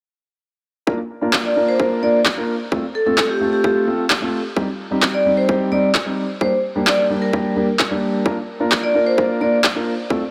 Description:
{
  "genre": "EDM, festival progressive house",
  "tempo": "130 BPM",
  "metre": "4/4",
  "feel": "straight",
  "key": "Bb major",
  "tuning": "A4 = 440 Hz",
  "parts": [
    { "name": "dark grand piano", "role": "accompaniment", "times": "0.9-10.2 s", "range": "G3 to Bb4", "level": "-23 LUFS", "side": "equal", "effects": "sidechain pumping" },
    { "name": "electronic kick drum", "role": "drums", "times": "0.9-10.2 s", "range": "none", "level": "-26 LUFS", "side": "equal", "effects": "overdrive, high-pass filter on kick, high-pass filter on room" },
    { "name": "electronic handclaps", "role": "drums", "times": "1.3-9.7 s", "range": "none", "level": "-23 LUFS", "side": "equal", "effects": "none" },
    { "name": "vibraphone with medium hard mallets", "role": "melody", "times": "1.4-9.6 s", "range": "G4 to D5", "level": "-22 LUFS", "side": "equal", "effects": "tape echo" }
  ],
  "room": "light reverb, small room ambience",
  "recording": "none",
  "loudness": "-18 LUFS",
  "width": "mono",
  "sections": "0.9-10.3 A section",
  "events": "none",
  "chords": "0.9 Bb; 2.7 F/A; 4.6 Cm; 6.4 Gm; 8.3 Bb"
}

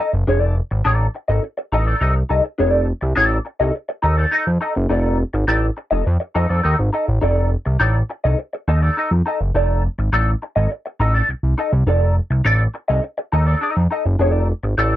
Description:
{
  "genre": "funk",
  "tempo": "103 BPM",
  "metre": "4/4",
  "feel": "straight",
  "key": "F mixolydian",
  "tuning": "A4 = 439 Hz",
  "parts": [
    { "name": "clean electric guitar", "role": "accompaniment", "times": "0.0-15.0 s", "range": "Eb4 to Eb5", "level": "-19 LUFS", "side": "left 1 dB", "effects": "wah, ensemble chorus" },
    { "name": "fat analog bass", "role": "bass", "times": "0.1-15.0 s", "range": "F1 to F2", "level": "-17 LUFS", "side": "equal", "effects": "none" }
  ],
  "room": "little or no reverb",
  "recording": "dry, close 1970s-style studio recording",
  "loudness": "-16 LUFS",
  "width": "side -13 dB against mid",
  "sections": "0.0-15.0 A section",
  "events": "none",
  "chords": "0.0 F6"
}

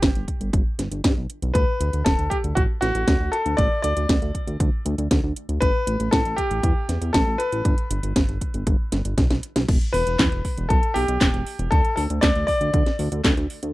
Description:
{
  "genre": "italo disco",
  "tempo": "118 BPM",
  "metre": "4/4",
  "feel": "straight",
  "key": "D major",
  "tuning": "A4 = 444 Hz",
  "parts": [
    { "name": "bright baby grand piano", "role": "melody", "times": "0.0-12.9 s", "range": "F#4 to D5", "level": "-25 LUFS", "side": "left 1 dB", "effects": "vintage 12-bit sampler grit, tape echo" },
    { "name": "chorused synth bass", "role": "bass", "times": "0.0-13.7 s", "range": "D1 to A2", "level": "-24 LUFS", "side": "equal", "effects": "none" },
    { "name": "electronic kick drum", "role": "drums", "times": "0.0-13.3 s", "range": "none", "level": "-22 LUFS", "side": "equal", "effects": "none" },
    { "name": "house drum kit", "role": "drums", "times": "0.0-13.7 s", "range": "crash cymbal, handclaps, hi-hat, snare drum", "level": "-24 LUFS", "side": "equal", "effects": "none" }
  ],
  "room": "little or no reverb",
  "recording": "dry, close 1970s-style studio recording",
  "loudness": "-19 LUFS",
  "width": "side -18 dB against mid",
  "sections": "0.0-9.7 A section; 9.7-13.7 B section",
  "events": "drum fill 8.9-9.7",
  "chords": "0.0 G; 1.6 D5; 5.6 A5; 7.7 G; 9.7 Em; 11.7 D5"
}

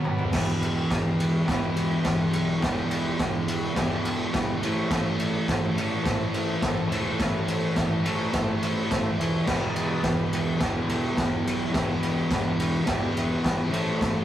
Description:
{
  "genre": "garage rock duo or trio",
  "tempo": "105 BPM",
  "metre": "4/4",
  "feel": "straight",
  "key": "E minor",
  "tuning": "A4 = 440 Hz",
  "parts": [
    { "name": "combo organ", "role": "sustained chords", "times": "0.0-14.2 s", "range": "B3 to B5", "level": "-35 LUFS", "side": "right 1 dB", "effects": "none" },
    { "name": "fuzz guitar", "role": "riff", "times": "0.0-14.2 s", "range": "E2 to B3", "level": "-26 LUFS", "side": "equal", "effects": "distortion" },
    { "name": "raw garage drum kit", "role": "drums", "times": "0.0-14.1 s", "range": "crash cymbal, kick drum, ride cymbal, snare drum, toms", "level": "-27 LUFS", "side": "equal", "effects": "none" },
    { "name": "fuzz fingered electric bass", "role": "bass", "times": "0.3-14.2 s", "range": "E1 to B1", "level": "-35 LUFS", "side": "equal", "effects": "none" }
  ],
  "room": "moderate small room reverb, RT60 0.5 s",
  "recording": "rough rehearsal-room recording, warm saturation",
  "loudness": "-23 LUFS",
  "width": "side -12 dB against mid",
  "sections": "0.3-14.2 A section",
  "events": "break 0.0-0.3; transistor combo organ fill 0.0-0.3; drum fill 0.0-0.3",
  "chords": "0.3 Em; 4.6 Am; 9.5 Em; 13.7 Am"
}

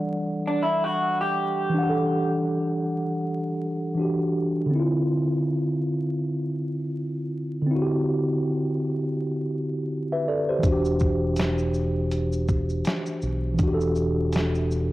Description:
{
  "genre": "lo-fi hip hop",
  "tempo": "81 BPM",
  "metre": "4/4",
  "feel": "swing 58% on 16ths",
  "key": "E minor",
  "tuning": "A4 = 439 Hz",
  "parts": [
    { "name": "mellow tine electric piano", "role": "accompaniment", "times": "0.0-14.9 s", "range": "D3 to F#5", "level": "-24 LUFS", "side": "equal", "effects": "medium stereo tremolo, cassette tape, low-pass filter" },
    { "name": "electric guitar through a small old amp", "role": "second line", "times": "0.5-2.3 s", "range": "D4 to G4", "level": "-25 LUFS", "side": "equal", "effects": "low-pass filter, analog delay" },
    { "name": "deep dub fingered electric bass", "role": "bass", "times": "10.6-14.9 s", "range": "E1 to B1", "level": "-27 LUFS", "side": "equal", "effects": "none" },
    { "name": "dusty soul sampler-style drum kit", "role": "drums", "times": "10.6-14.9 s", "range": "hi-hat, kick drum, shaker, snare drum", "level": "-26 LUFS", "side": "equal", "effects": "none" }
  ],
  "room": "moderate spring reverb, RT60 2.5 s",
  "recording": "home recording on cassette, vinyl crackle",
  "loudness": "-22 LUFS",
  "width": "side -16 dB against mid",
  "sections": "0.0-14.9 A section",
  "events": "none",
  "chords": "0.0 Em9; 4.7 Dm9; 10.6 Em9"
}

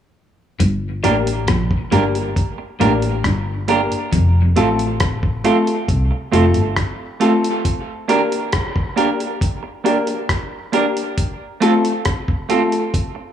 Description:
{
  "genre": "dub reggae",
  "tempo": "68 BPM",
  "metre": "4/4",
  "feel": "straight",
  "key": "G minor",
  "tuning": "A4 = 440 Hz",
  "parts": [
    { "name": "electric guitar at the edge of break-up", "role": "riff", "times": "0.6-4.4 s", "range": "F2 to Bb2", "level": "-23 LUFS", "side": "left 4 dB", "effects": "analog chorus, tape echo" },
    { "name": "vintage muted fingered electric bass", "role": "bass", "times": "0.6-6.8 s", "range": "F1 to C2", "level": "-18 LUFS", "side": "equal", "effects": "none" },
    { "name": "dusty soul sampler-style drum kit", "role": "drums", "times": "0.6-13.2 s", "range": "hi-hat, kick drum, rim click", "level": "-22 LUFS", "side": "equal", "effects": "none" },
    { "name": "semi-hollow electric guitar", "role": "accompaniment", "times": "1.0-13.2 s", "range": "A3 to Bb4", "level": "-21 LUFS", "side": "right 6 dB", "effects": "tape echo" },
    { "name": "warm upright piano", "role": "stabs", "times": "1.0-12.8 s", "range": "A3 to Bb4", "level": "-21 LUFS", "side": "left 4 dB", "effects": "tape echo" }
  ],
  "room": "moderate spring reverb, RT60 2.5 s",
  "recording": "small room ambience",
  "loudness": "-16 LUFS",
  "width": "side -9 dB against mid",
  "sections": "0.6-13.3 A section",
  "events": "break 7.6-13.3; drum fill 12.9-13.3",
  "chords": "0.6 Gm; 4.1 F; 7.6 Gm; 11.2 F"
}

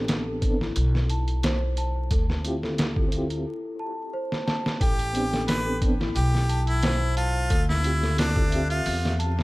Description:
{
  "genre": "trip hop",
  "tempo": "89 BPM",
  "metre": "4/4",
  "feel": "swing 54% on 16ths",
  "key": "A minor",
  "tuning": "A4 = 445 Hz",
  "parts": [
    { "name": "mellow reed electric piano", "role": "accompaniment", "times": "0.0-9.4 s", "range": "B3 to E5", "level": "-31 LUFS", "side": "equal", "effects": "fast tremolo, tape echo" },
    { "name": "celesta", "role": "arpeggios", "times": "0.0-9.4 s", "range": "E4 to A5", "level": "-33 LUFS", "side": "left 1 dB", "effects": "dub echo" },
    { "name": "upright bass", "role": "bass", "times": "0.0-9.4 s", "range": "A1 to E2", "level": "-26 LUFS", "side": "equal", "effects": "none" },
    { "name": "trip hop sampler-style drum kit", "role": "drums", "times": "0.1-9.4 s", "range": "hi-hat, kick drum, snare drum", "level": "-26 LUFS", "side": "equal", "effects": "none" },
    { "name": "clear harmonica", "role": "melody", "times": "4.8-9.1 s", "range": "D4 to B4", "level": "-28 LUFS", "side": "equal", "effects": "dub echo" }
  ],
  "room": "small room ambience",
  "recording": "vinyl crackle",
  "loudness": "-22 LUFS",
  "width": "side -20 dB against mid",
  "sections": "0.0-4.8 A section; 4.8-9.4 B section",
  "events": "break 3.5-4.8; drum fill 4.3-4.8",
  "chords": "0.0 Am11; 2.1 Dm11; 4.8 Am11; 7.5 Dm11"
}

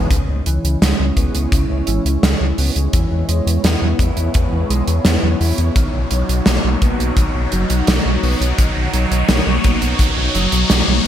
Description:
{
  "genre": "synthwave",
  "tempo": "85 BPM",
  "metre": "4/4",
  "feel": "straight",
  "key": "unclear",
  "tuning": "A4 = 440 Hz",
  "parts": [
    { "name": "lush unison pad", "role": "sustained chords", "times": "0.0-11.1 s", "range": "Ab3 to Db5", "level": "-24 LUFS", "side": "equal", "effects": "chorus, phaser, sidechain pumping" },
    { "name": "round analog bass", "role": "bass", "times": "0.0-11.1 s", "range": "F#1 to E2", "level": "-18 LUFS", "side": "equal", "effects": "sidechain pumping" },
    { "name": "mellow electric guitar", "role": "arpeggios", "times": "0.1-11.1 s", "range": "Db3 to E4", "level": "-24 LUFS", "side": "right 1 dB", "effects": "analog chorus, ping-pong delay" },
    { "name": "gated 80s drum kit", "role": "drums", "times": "0.1-10.8 s", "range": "hi-hat, snare drum", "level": "-19 LUFS", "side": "right 1 dB", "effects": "gated reverb" },
    { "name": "kick drum", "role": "drums", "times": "0.1-10.1 s", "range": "none", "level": "-18 LUFS", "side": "equal", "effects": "none" },
    { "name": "riser", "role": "sound effects", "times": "2.0-11.1 s", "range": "none", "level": "-25 LUFS", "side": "left 1 dB", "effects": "none" }
  ],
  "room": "moderate lush hall reverb, RT60 1.7 s, small room ambience",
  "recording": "bright 1980s-style digital production",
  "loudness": "-14 LUFS",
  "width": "side -10 dB against mid",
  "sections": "0.1-11.1 A section",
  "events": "filter sweep on analog synth pad 0.1-11.1; riser 2.0-11.1",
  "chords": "0.1 Dbm7; 2.9 E; 5.8 Bmaj7"
}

